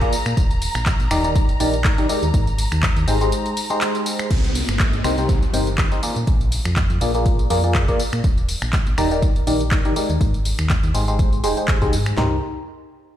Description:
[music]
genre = piano house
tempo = 122 BPM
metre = 4/4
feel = swing 55% on 16ths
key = C minor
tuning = A4 = 440 Hz
[part]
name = rich chamber violin section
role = sustained chords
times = 0.0-4.3 s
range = Bb5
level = -30 LUFS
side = equal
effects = sidechain pumping
[part]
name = barking FM electric piano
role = riff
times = 0.0-12.4 s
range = C3 to D5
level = -22 LUFS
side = left 1 dB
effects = phaser, sidechain pumping, low-pass filter, ping-pong delay
[part]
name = house drum kit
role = drums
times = 0.0-12.2 s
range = crash cymbal, finger snaps, handclaps, hi-hat, tambourine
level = -26 LUFS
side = equal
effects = small room ambience
[part]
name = punchy analog drum machine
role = drums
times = 0.0-12.3 s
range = handclaps, kick drum, snare drum, toms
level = -20 LUFS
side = equal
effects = small room ambience
[part]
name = solid FM bass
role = bass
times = 0.3-12.4 s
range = Eb1 to Bb2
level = -22 LUFS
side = equal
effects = sidechain pumping
[part]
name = downlifter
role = sound effects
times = 4.3-8.2 s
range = none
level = -30 LUFS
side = equal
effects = none
[sound]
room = light reverb, digital ambience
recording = played on a big sound system in a bare room, stone room reverb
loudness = -17 LUFS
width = side -11 dB against mid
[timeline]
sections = 0.0-4.3 A section; 4.3-12.2 B section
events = drop 0.0-4.3; break 3.3-4.3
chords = 0.4 Ebmaj7; 2.3 Abmaj7; 4.3 Cm7; 6.0 Bb7; 8.2 Ebmaj7; 10.2 Abmaj7; 12.2 Cm7

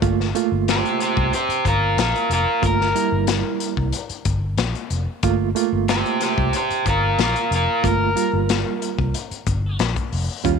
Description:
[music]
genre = straight-eighth soul blues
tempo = 92 BPM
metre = 4/4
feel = straight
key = G dorian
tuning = A4 = 439 Hz
[part]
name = bright reed electric piano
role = accompaniment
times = 0.0-10.6 s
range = G3 to F4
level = -23 LUFS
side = right 17 dB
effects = fast tremolo
[part]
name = vintage muted fingered electric bass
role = bass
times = 0.0-10.6 s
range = F1 to Eb2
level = -22 LUFS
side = left 1 dB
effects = none
[part]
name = crunchy breakbeat drum kit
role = drums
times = 0.0-10.6 s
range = hi-hat, kick drum, snare drum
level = -25 LUFS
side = left 6 dB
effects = none
[part]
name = overdriven semi-hollow guitar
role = melody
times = 0.7-9.8 s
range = F4 to C5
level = -21 LUFS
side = equal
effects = none
[sound]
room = small room ambience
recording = 1960s-style stereo with parts hard left and right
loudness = -18 LUFS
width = side -6 dB against mid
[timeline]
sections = 0.0-10.6 A section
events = none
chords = 0.0 Gm7

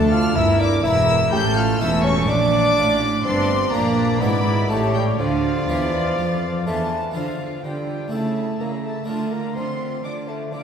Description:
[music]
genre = classical, baroque-style concerto movement with solo episodes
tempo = 125 BPM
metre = 4/4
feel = straight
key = D minor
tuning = A4 = 439 Hz
[part]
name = mellow bassoon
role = melody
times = 0.0-10.6 s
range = F3 to G4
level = -24 LUFS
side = left 1 dB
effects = none
[part]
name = rich chamber violin section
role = melody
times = 0.0-10.6 s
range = D5 to G6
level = -28 LUFS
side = left 3 dB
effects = none
[part]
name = warm chamber violin section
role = second line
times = 0.0-10.6 s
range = A4 to D6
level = -29 LUFS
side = left 3 dB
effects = none
[part]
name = dark chamber viola section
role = accompaniment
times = 0.0-10.6 s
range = C#4 to G4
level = -28 LUFS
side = equal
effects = none
[part]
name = harpsichord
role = accompaniment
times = 0.0-10.6 s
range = D2 to E5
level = -27 LUFS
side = right 1 dB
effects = none
[part]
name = rich chamber double bass section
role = bass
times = 0.0-7.2 s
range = E1 to F2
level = -25 LUFS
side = right 2 dB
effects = none
[part]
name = warm chamber cello section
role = bass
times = 0.0-10.6 s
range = D2 to F3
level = -25 LUFS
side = right 2 dB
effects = none
[sound]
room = wet concert hall reverb, RT60 2.2 s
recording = heard from further back in the room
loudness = -18 LUFS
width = side -7 dB against mid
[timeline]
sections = 0.0-7.2 A section; 7.2-10.6 B section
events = none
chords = 0.4 Edim/G; 1.3 A; 2.3 Bb; 3.2 Gm; 4.2 E7/G#; 4.7 A7; 5.2 Dm; 8.1 A/C#; 9.1 Dm

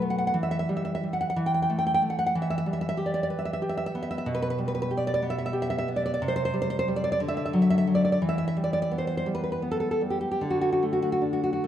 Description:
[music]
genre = romantic piece for solo classical guitar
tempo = 48-63 BPM (dotted quarters)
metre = 6/8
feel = rubato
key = E minor, G major from 4.3 s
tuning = A4 = 440 Hz
[part]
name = nylon-string guitar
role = solo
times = 0.0-11.7 s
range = B2 to G5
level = -24 LUFS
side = equal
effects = none
[sound]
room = wet concert hall reverb, RT60 1.9 s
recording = none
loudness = -24 LUFS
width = side -10 dB against mid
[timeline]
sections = 0.0-11.7 A section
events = none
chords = 0.4 Em; 1.4 Emadd11; 2.3 Em; 4.3 G/B; 6.2 Csus2; 7.2 D; 8.2 Em; 10.4 D5

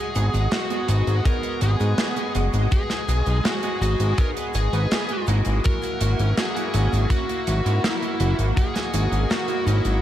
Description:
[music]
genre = synthwave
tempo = 82 BPM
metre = 4/4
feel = straight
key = G# minor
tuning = A4 = 440 Hz
[part]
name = fuzz lead guitar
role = melody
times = 0.0-10.0 s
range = E4 to A#4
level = -29 LUFS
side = left 2 dB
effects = distortion, digital delay
[part]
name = lush unison pad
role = sustained chords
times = 0.0-10.0 s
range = G#3 to D#5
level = -30 LUFS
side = equal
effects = chorus, sidechain pumping
[part]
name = crunchy overdriven guitar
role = riff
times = 0.0-10.0 s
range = F#3 to G#4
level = -34 LUFS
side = right 3 dB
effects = ensemble chorus, digital delay
[part]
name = tight metal drum kit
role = drums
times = 0.1-10.0 s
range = cabasa, hi-hat, snare drum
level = -29 LUFS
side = right 1 dB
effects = gated reverb
[part]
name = chorused polysynth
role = stabs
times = 0.2-10.0 s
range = A#3 to B4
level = -31 LUFS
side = right 2 dB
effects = none
[part]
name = fat analog bass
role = bass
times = 0.2-10.0 s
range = F#1 to G#2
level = -20 LUFS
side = equal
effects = none
[part]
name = kick drum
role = drums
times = 1.3-8.7 s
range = none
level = -24 LUFS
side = equal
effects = none
[sound]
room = light reverb, small room ambience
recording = none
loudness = -20 LUFS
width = side -12 dB against mid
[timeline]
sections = 0.0-10.0 A section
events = none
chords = 0.0 G#m7; 5.6 F#7

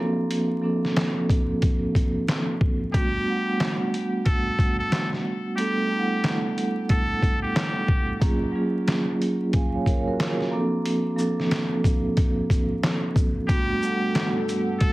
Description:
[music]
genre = hip hop, boom-bap hip-hop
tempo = 91 BPM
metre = 4/4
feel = swing 63% on 16ths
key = G major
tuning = A4 = 439 Hz
[part]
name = vibraphone with soft mallets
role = accompaniment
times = 0.0-14.9 s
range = F3 to G#5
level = -25 LUFS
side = right 1 dB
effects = high-pass filter, low-pass filter
[part]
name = trip hop sampler-style drum kit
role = drums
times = 0.3-14.9 s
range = handclaps, hi-hat, kick drum, shaker, snare drum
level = -24 LUFS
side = equal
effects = none
[part]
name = trumpet with straight mute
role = melody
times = 2.9-8.2, 13.5-14.9 s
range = G4 to A4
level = -29 LUFS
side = left 1 dB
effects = high-pass filter, low-pass filter, ping-pong delay
[part]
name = dark analog pad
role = sustained chords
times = 13.5-14.9 s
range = G2 to F#5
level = -32 LUFS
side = left 1 dB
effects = chorus, high-pass filter, low-pass filter
[sound]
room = light reverb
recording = heavily compressed radio sound, vinyl crackle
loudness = -21 LUFS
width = side -19 dB against mid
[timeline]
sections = 0.0-13.5 A section; 13.5-14.9 B section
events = none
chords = 0.0 Bbmaj9; 2.9 Gmaj9; 8.2 F#maj9; 10.5 Bbmaj9; 13.5 Gmaj9

